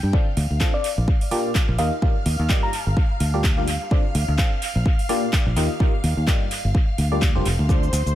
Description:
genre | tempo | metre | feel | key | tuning
piano house | 127 BPM | 4/4 | swing 57% on 16ths | G minor | A4 = 440 Hz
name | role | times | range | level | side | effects
string machine, violins | sustained chords | 0.0-8.2 s | C5 to G6 | -32 LUFS | equal | ensemble chorus, sidechain pumping
fingered electric bass | bass | 0.0-8.1 s | F1 to G2 | -21 LUFS | equal | sidechain pumping
barking FM electric piano | riff | 0.1-7.8 s | G2 to F5 | -27 LUFS | left 1 dB | phaser, sidechain pumping, dub echo
electronic kick drum | drums | 0.1-7.8 s | none | -20 LUFS | equal | none
house drum kit | drums | 0.4-8.1 s | handclaps, hi-hat, shaker | -29 LUFS | right 1 dB | dub echo
soft struck synth lead | melody | 0.7-2.8 s | D5 to Bb5 | -30 LUFS | left 2 dB | chorus, dub echo
room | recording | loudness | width
digital ambience | echo-heavy mix | -18 LUFS | side -13 dB against mid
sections
0.0-8.2 A section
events
none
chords
0.1 Dm7; 0.8 Bb6; 1.8 Ebmaj9; 2.7 Gm7; 3.9 Dm7; 4.6 Bb6; 5.6 Ebmaj9; 6.5 Gm7

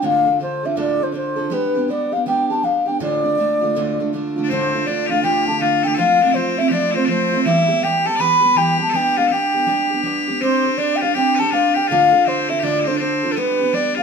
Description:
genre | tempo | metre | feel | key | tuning
celtic folk, Celtic hornpipe | 162 BPM | 4/4 | swing 63% on 8ths | D dorian | A4 = 444 Hz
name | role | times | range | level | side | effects
mellow baroque flute | melody | 0.0-14.0 s | A4 to B5 | -18 LUFS | left 1 dB | none
picked steel-string acoustic guitar | accompaniment | 0.0-14.0 s | D2 to C5 | -21 LUFS | right 3 dB | none
loud bright bagpipes | second line | 4.4-14.0 s | B3 to D5 | -22 LUFS | left 5 dB | none
room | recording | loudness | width
wet stone room reverb, RT60 1.0 s | band playing live in one room | -16 LUFS | side -6 dB against mid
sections
0.0-4.5 A section; 4.5-14.0 A section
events
none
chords
0.0 Dm; 1.5 G; 3.0 Dm; 6.0 F; 7.5 Em; 8.9 G; 10.4 Csus2; 11.9 Dm; 13.4 G

